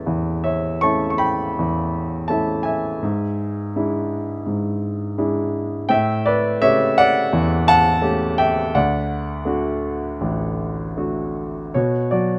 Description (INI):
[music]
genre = classical, lyrical solo piano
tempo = 82 BPM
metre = 4/4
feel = uneven beats, rubato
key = D major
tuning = A4 = 437 Hz
[part]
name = warm grand piano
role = solo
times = 0.0-12.4 s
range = A1 to C#6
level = -21 LUFS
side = equal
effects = none
[sound]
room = light reverb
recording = close, detailed microphones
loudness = -21 LUFS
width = mono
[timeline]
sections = 0.0-11.7 A section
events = none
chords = 0.0 A; 3.0 E7/G#; 5.9 A7; 8.7 D; 11.7 Bmadd9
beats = | 0.07 0.83 1.58 2.31 | 3.03 3.75 4.46 5.18 | 5.90 6.62 7.32 8.02 | 8.74 9.47 10.21 10.97 | 11.74